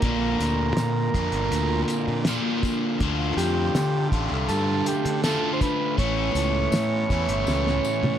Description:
psychedelic rock; 81 BPM; 4/4; straight; A4 = 440 Hz
overdriven combo organ; melody; 0.0-8.2 s; G4 to C#5; -28 LUFS; right 3 dB; tape echo
string machine, cellos; sustained chords; 0.0-8.2 s; Bb3 to D6; -36 LUFS; right 3 dB
crunchy overdriven guitar; riff; 0.0-8.2 s; A2 to F4; -26 LUFS; left 1 dB; phaser
fuzz fingered electric bass; bass; 0.0-8.2 s; G1 to D3; -27 LUFS; equal; overdrive
cloth-damped thuddy drum kit; drums; 0.0-8.2 s; hi-hat, kick drum, snare drum, toms; -26 LUFS; equal
tambourine; percussion; 0.4-8.0 s; -40 LUFS; left 8 dB
small room ambience; -21 LUFS; side -10 dB against mid
0.0-8.2 A section
drum fill 7.5-8.2
0.0 Bb; 3.0 Dm; 6.0 Aadd9

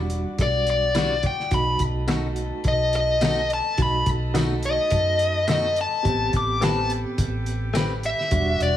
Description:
straight-eighth soul blues; 106 BPM; 4/4; swing 54% on 16ths; A4 = 440 Hz
reed electric piano; accompaniment; 0.0-8.8 s; G3 to G4; -30 LUFS; right 4 dB; fast tremolo
mellow horn section; sustained chords; 0.0-8.8 s; F#4 to A5; -36 LUFS; left 4 dB
vintage muted fingered electric bass; bass; 0.0-8.8 s; E1 to F#2; -26 LUFS; equal
cloth-damped thuddy drum kit; drums; 0.1-8.7 s; hi-hat, kick drum, snare drum, tambourine; -27 LUFS; equal
dark smooth lead guitar; melody; 0.4-8.8 s; D5 to D6; -23 LUFS; left 2 dB; overdrive
direct-recorded clean electric guitar; stabs; 0.9-7.9 s; B2 to B4; -30 LUFS; left 4 dB
light reverb, small room reverb; small room ambience; -20 LUFS; side -11 dB against mid
0.0-8.8 A section
lead electric guitar solo 0.0-8.8
0.0 Em9; 1.5 B7; 6.0 Am9

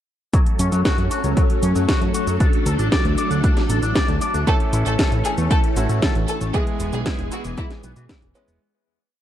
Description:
italo disco; 116 BPM; 4/4; straight; A4 = 438 Hz
phased string machine; sustained chords; 0.3-8.6 s; E3 to A4; -26 LUFS; equal; ensemble chorus, phaser
electric guitar with an envelope filter; arpeggios; 0.3-8.6 s; E3 to D5; -28 LUFS; left 4 dB; spring reverb, ping-pong delay
electronic kick drum; drums; 0.3-8.2 s; -20 LUFS; equal
house drum kit; drums; 0.3-8.6 s; cabasa, hi-hat, snare drum; -26 LUFS; equal
fat analog bass; bass; 0.6-8.6 s; E1 to F#2; -22 LUFS; equal
clear studio violin section; melody; 4.5-8.4 s; C#4 to A4; -28 LUFS; equal; tape echo
bright concert grand piano; stabs; 4.5-8.6 s; G#3 to B4; -29 LUFS; right 3 dB; ping-pong delay
light reverb; dark, warm production; -17 LUFS; side -11 dB against mid
0.3-8.6 verse
fade-out 5.9-8.6
0.3 F#m; 2.4 D; 4.5 A; 6.5 E

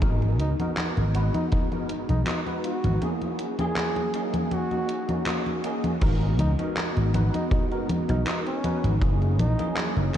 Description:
vaporwave; 80 BPM; 4/4; straight; G# minor; A4 = 440 Hz
bell-like tine electric piano; accompaniment; 0.0-10.2 s; A#3 to B4; -31 LUFS; equal; medium stereo tremolo, ensemble chorus, analog delay
warbly tape-like pad; sustained chords; 0.0-10.2 s; E3 to A#5; -35 LUFS; left 1 dB; chorus, built-in reverb, phaser
vintage slap bass; bass; 0.0-10.2 s; F#1 to C#2; -23 LUFS; equal
gated 80s digital drum machine; drums; 0.0-10.2 s; congas, crash cymbal, handclaps, hi-hat; -29 LUFS; equal; gated reverb, overdrive
kick drum; drums; 0.0-9.2 s; -27 LUFS; equal
mellow flugelhorn; melody; 0.4-9.8 s; C#4 to G#4; -33 LUFS; right 1 dB; analog delay
moderate huge ambient reverb, RT60 8.2 s; dreamy mix soaked in reverb, cassette tape; -23 LUFS; side -10 dB against mid
0.0-6.0 A section; 6.0-10.2 B section
break 3.0-6.0
0.0 G#m9; 3.0 F#9; 4.1 F#69/A#; 6.0 G#m9; 9.0 F#9

